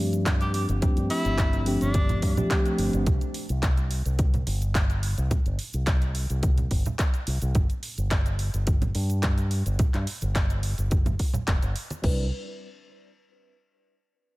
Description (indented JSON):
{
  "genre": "nu-disco, nu disco",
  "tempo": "107 BPM",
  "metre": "4/4",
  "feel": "straight",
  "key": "C major",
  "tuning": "A4 = 437 Hz",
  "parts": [
    { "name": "mellow tine electric piano", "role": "accompaniment", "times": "0.0-3.0, 12.0-12.3 s", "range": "F3 to B4", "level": "-28 LUFS", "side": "equal", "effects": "phaser, sidechain pumping, tape echo" },
    { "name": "fingered electric bass with an envelope filter", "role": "bass", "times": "0.0-12.3 s", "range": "F1 to G2", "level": "-26 LUFS", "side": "equal", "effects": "none" },
    { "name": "house drum kit", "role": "drums", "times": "0.1-12.2 s", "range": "crash cymbal, handclaps, hi-hat", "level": "-33 LUFS", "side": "equal", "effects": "overdrive" },
    { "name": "cabasa and congas", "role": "percussion", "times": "0.1-12.0 s", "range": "none", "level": "-33 LUFS", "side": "right 2 dB", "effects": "none" },
    { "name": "electronic kick drum", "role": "drums", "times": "0.3-12.2 s", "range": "none", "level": "-24 LUFS", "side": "equal", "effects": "overdrive" },
    { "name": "edgy tenor saxophone", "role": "melody", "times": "0.4-2.2 s", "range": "D4 to G4", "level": "-32 LUFS", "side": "equal", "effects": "tape echo" }
  ],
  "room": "light reverb",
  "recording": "none",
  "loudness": "-23 LUFS",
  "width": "side -20 dB against mid",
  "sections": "0.0-12.0 A section; 12.0-14.3 B section",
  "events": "none",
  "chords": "0.0 G9sus4; 3.1 C5; 7.6 N.C.; 12.0 Cmaj9"
}